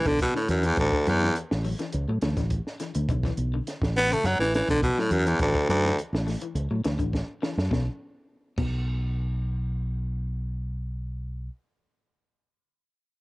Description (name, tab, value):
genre	afrobeat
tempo	104 BPM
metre	4/4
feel	straight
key	unclear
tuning	A4 = 441 Hz
part	raspy baritone saxophone	melody	0.0-6.0 s	D2 to B3	-23 LUFS	equal	cassette tape
part	electric guitar at the edge of break-up	arpeggios	0.1-8.7 s	B2 to A3	-36 LUFS	left 6 dB	lush chorus
part	fingered electric bass	bass	0.1-11.5 s	A1 to A2	-27 LUFS	equal	none
part	compact cocktail drum kit	drums	0.1-8.7 s	crash cymbal, hi-hat, kick drum, snare drum	-31 LUFS	equal	cassette tape
room	small room ambience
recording	home recording on cassette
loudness	-24 LUFS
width	side -22 dB against mid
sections	0.0-7.7 A section; 7.7-10.0 B section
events	baritone saxophone solo 0.0-7.7; drum fill 7.1-7.7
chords	0.0 Bm; 0.8 Asus4; 3.1 Bm7; 5.4 Asus4; 7.7 N.C.